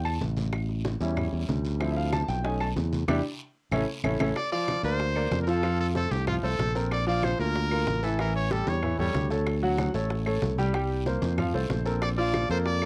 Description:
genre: latin, salsa.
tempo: 188 BPM.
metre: 4/4.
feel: straight.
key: unclear.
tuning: A4 = 438 Hz.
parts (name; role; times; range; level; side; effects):
clear grand piano; accompaniment; 0.0-12.9 s; E3 to A5; -32 LUFS; equal; cassette tape.
modern bright fingered electric bass; bass; 0.0-12.9 s; A1 to F2; -31 LUFS; equal; none.
bongos; percussion; 0.1-12.9 s; none; -39 LUFS; equal; none.
claves; percussion; 0.1-12.9 s; none; -42 LUFS; equal; none.
congas; percussion; 0.1-12.9 s; none; -38 LUFS; equal; none.
guiro; percussion; 0.2-12.9 s; none; -49 LUFS; equal; none.
brilliant trumpet; melody; 4.4-9.3, 12.0-12.9 s; F4 to D5; -33 LUFS; equal; none.
room: light reverb.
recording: home recording on cassette.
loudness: -27 LUFS.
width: mono.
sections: 0.0-4.4 A section; 4.4-12.9 B section.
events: grand piano solo 0.0-4.4; band accent 3.1-4.4; drum fill 3.7-4.4.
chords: 0.0 A5; 0.5 A7; 1.8 Dm9; 2.4 B7; 3.1 Em7; 3.7 A; 4.4 Bbadd9; 5.6 F; 6.9 Bbmaj7; 8.2 A7; 9.5 Dmaj7; 10.7 C5; 11.4 F.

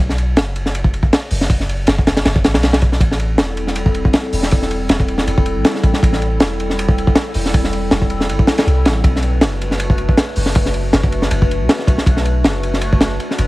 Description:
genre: drum and bass, jungle.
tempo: 159 BPM.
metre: 4/4.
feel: swing 55% on 16ths.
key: unclear.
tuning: A4 = 439 Hz.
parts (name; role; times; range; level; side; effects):
long sustained 808-style bass; bass; 0.0-13.5 s; E1 to C2; -19 LUFS; equal; tube saturation.
crunchy breakbeat drum kit; drums; 0.1-13.5 s; hi-hat, kick drum, ride cymbal, snare drum; -15 LUFS; equal; none.
warbly tape-like pad; sustained chords; 3.2-13.5 s; G3 to B4; -22 LUFS; equal; chorus, built-in reverb.
room: studio reverb.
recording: vinyl crackle.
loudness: -13 LUFS.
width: side -19 dB against mid.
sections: 0.0-13.5 A section.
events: none.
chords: 0.0 B5; 3.0 Am7; 9.0 Bm7.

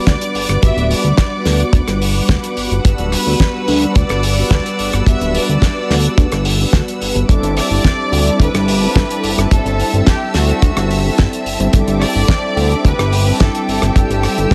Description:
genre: nu-disco, nu disco.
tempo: 108 BPM.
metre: 4/4.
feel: straight.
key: G major.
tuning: A4 = 439 Hz.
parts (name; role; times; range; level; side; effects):
rich chamber violin section; melody; 0.0-14.5 s; F#4 to E5; -25 LUFS; equal; vintage 12-bit sampler grit, digital delay.
mellow synth brass; accompaniment; 0.0-14.5 s; G3 to B4; -23 LUFS; equal; chorus, sidechain pumping.
rich symphonic string section; sustained chords; 0.0-14.5 s; C4 to E6; -27 LUFS; equal; sidechain pumping.
fat analog bass; bass; 0.1-14.5 s; D1 to D2; -19 LUFS; equal; tube saturation.
damped 70s drum kit; drums; 0.1-14.5 s; hi-hat, rim click, snare drum; -22 LUFS; equal; none.
kick drum; drums; 0.1-14.5 s; none; -15 LUFS; equal; none.
room: studio reverb.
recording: none.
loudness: -15 LUFS.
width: mono.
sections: 0.0-14.5 A section.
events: none.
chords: 0.0 Gmaj7; 7.3 C69/G.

